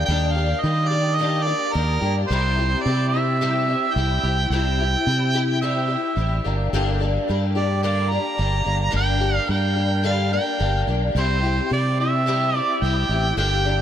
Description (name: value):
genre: folk rock and heartland rock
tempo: 108 BPM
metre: 4/4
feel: straight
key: unclear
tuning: A4 = 439 Hz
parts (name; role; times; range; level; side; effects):
- warm harmonica; melody; 0.0-13.8 s; Bb4 to Bb5; -24 LUFS; right 3 dB; tape echo
- picked old ladder-braced acoustic guitar; accompaniment; 0.0-13.8 s; G2 to G4; -25 LUFS; left 4 dB; ensemble chorus
- fingered electric bass; bass; 0.0-13.8 s; G1 to Eb3; -22 LUFS; equal; none
room: moderate huge ambient reverb, RT60 4.5 s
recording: dreamy mix soaked in reverb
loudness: -19 LUFS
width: side -10 dB against mid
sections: 0.0-13.8 A section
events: none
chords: 0.0 Ebmaj7; 2.3 C; 6.4 Gm; 11.2 C